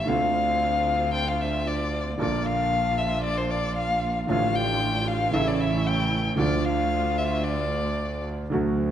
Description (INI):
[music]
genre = tango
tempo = 114 BPM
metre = 4/4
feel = rubato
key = D minor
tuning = A4 = 440 Hz
[part]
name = warm violin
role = second line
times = 0.0-8.3 s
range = C5 to G5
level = -26 LUFS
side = left 3 dB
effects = none
[part]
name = clear concert grand piano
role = accompaniment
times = 0.0-8.9 s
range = A1 to F#4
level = -28 LUFS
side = right 2 dB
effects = none
[part]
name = muted studio string section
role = stabs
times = 0.0-8.4 s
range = A3 to F4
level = -33 LUFS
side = right 1 dB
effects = none
[part]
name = clear double bass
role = bass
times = 0.0-8.9 s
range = A1 to D2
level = -29 LUFS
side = right 2 dB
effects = none
[sound]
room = wet recital hall reverb, RT60 1.4 s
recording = none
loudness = -22 LUFS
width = side -10 dB against mid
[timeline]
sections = 0.0-8.5 A section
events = violin solo 0.0-8.5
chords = 0.1 Dm7; 2.2 Bb; 4.3 Dm/A; 5.3 A; 6.4 Dm